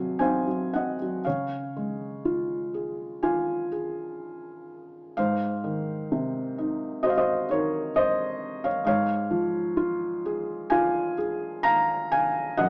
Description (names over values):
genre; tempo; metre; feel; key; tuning
classical, lyrical solo piano; 55-67 BPM; 4/4; rubato; Db major; A4 = 440 Hz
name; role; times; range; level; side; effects
felt-muted upright piano; solo; 0.0-12.7 s; Gb2 to Bb5; -27 LUFS; equal; none
room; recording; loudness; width
moderate recital hall reverb, RT60 1.4 s; small speaker sound; -27 LUFS; mono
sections
0.0-1.2 A section; 1.2-12.7 B section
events
none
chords
0.0 Ab13/C; 1.2 Db; 5.2 Ab7; 8.9 Db/Ab